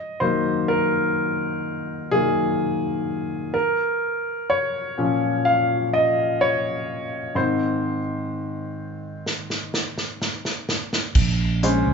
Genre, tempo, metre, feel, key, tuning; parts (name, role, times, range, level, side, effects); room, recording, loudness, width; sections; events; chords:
pop ballad; 63 BPM; 4/4; straight; A4 = 440 Hz
clear baby grand piano; accompaniment; 0.0-11.9 s; Ab2 to F5; -21 LUFS; left 1 dB
unplugged drum kit; drums; 9.3-11.9 s; crash cymbal, hi-hat, kick drum, snare drum; -23 LUFS; right 1 dB
fingered electric bass; bass; 11.2-11.9 s; Bb1 to Db2; -21 LUFS; right 2 dB
moderate large studio reverb, RT60 1.4 s; band playing live in one room, nothing above 7.6 kHz; -21 LUFS; side -5 dB against mid
0.0-11.2 A section
grand piano solo 0.0-11.2; drum fill 9.3-11.2
0.0 Ebm; 3.5 Bbm; 7.4 Ab; 11.2 Bbm7